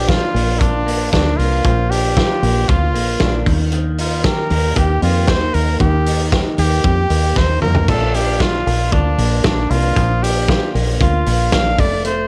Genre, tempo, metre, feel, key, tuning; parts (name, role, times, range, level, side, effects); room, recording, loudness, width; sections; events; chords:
jangly indie pop; 115 BPM; 4/4; straight; Bb major; A4 = 440 Hz
clear trumpet; melody; 0.0-12.3 s; D4 to F5; -23 LUFS; equal; cassette tape, plate reverb
direct-recorded clean electric guitar; arpeggios; 0.0-12.3 s; Eb3 to G4; -25 LUFS; equal; spring reverb, plate reverb
deep dub fingered electric bass; bass; 0.0-12.3 s; F1 to F2; -20 LUFS; equal
loose indie drum kit; drums; 0.1-12.2 s; crash cymbal, hi-hat, kick drum, snare drum, toms; -21 LUFS; equal; cassette tape
light reverb; home recording on cassette; -16 LUFS; mono
0.0-12.3 A section
drum fill 7.4-7.9
0.0 Bb; 3.5 Eb; 7.9 Bb